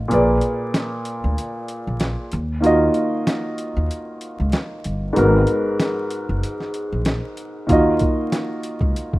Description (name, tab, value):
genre	hip hop, boom-bap hip-hop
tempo	95 BPM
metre	4/4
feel	swing 55% on 16ths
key	Eb harmonic minor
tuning	A4 = 438 Hz
part	warm upright piano	accompaniment	0.0-9.2 s	Ab2 to Eb5	-20 LUFS	equal	high-pass filter, low-pass filter
part	upright bass	bass	0.0-8.9 s	Gb1 to Eb2	-22 LUFS	equal	none
part	boom bap sampler-style drum kit	drums	0.1-9.2 s	hi-hat, kick drum, snare drum	-23 LUFS	equal	none
room	small room ambience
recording	rough home demo mix, vinyl crackle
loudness	-18 LUFS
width	side -18 dB against mid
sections	0.0-9.2 A section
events	break 0.0-7.7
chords	0.1 Bb7b9; 2.3 Ebmadd9; 5.2 Abm7; 7.7 Ebmadd9